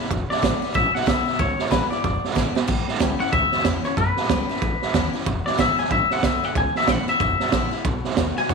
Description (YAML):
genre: rockabilly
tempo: 186 BPM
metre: 4/4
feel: swing 60% on 8ths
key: E mixolydian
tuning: A4 = 440 Hz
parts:
  - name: picked steel-string acoustic guitar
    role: accompaniment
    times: 0.0-8.5 s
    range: E2 to F#4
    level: -30 LUFS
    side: left 17 dB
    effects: none
  - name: raw garage drum kit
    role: drums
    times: 0.0-8.5 s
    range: hi-hat, kick drum, snare drum, splash cymbal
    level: -23 LUFS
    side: right 6 dB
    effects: none
  - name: upright bass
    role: bass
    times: 0.1-8.5 s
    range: E1 to F#2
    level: -28 LUFS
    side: left 2 dB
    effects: none
  - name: twangy electric guitar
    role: melody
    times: 0.3-8.5 s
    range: B4 to G#5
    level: -23 LUFS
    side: left 4 dB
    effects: tape echo
room: light reverb, studio reverb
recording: 1960s-style stereo with parts hard left and right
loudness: -19 LUFS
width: side -4 dB against mid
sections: 0.0-8.5 A section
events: drum fill 2.4-2.7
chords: 0.0 E7; 2.7 A7; 5.3 E7; 7.8 B7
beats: | 0.11 0.43 0.75 1.07 | 1.40 1.72 2.04 2.36 | 2.68 3.01 3.33 3.65 | 3.97 4.30 4.62 4.94 | 5.26 5.59 5.91 6.23 | 6.56 6.88 7.20 7.53 | 7.85 8.17 8.50